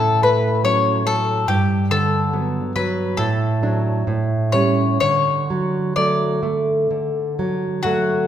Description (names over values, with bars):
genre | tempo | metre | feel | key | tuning
romantic duo for mandolin and classical guitar | 62-73 BPM | 4/4 | rubato | D major | A4 = 440 Hz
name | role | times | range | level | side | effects
bowl-back mandolin | melody | 0.0-8.3 s | F#4 to D5 | -20 LUFS | left 4 dB | none
nylon-string guitar | accompaniment | 0.0-8.3 s | G2 to D4 | -19 LUFS | right 2 dB | none
room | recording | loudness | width
wet scoring stage reverb, RT60 1.7 s | recorded in a church or concert hall | -17 LUFS | side -10 dB against mid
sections
0.0-8.3 A section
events
none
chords
0.0 F#m/A; 1.5 Gmaj7; 3.2 D/A; 4.1 A7; 5.0 D